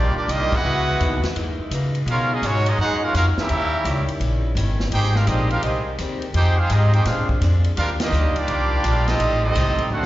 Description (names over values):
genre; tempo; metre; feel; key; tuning
jazz, big band swing; 168 BPM; 4/4; swing 65% on 8ths; Eb major; A4 = 440 Hz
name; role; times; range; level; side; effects
bright trumpet section; melody; 0.0-10.1 s; G#3 to G5; -23 LUFS; right 2 dB; slapback echo
muted trombone section; second line; 0.0-10.1 s; F#3 to G4; -26 LUFS; right 2 dB; slapback echo
picked acoustic archtop guitar; accompaniment; 0.0-10.1 s; Gb2 to G4; -33 LUFS; left 6 dB; slapback echo
warm saxophone section; sustained chords; 0.0-10.1 s; C3 to G4; -32 LUFS; left 1 dB; none
upright bass; bass; 0.0-10.1 s; G1 to Db3; -20 LUFS; equal; none
swinging big-band drum kit; drums; 0.3-10.1 s; crash cymbal, hi-hat, kick drum, ride cymbal, snare drum; -30 LUFS; equal; none
room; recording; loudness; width
light reverb; live gig heard through the venue's PA, recital hall reverb, nothing above 7.5 kHz; -18 LUFS; side -15 dB against mid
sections
0.0-10.1 A section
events
band accent 0.5, 8.0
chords
0.0 Ebmaj9; 0.6 Dbm11; 1.4 Gb13; 2.1 B69; 3.5 Eb7b9; 4.9 Abmaj7; 6.3 Fm9; 7.1 Bb9; 7.8 Ebmaj9; 9.2 Am7b5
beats
0.29 | 0.65 1.00 1.36 1.72 | 2.07 2.43 2.78 3.14 | 3.50 3.85 4.21 4.57 | 4.92 5.28 5.63 5.99 | 6.35 6.70 7.06 7.42 | 7.77 8.13 8.49 8.84 | 9.20 9.56 9.91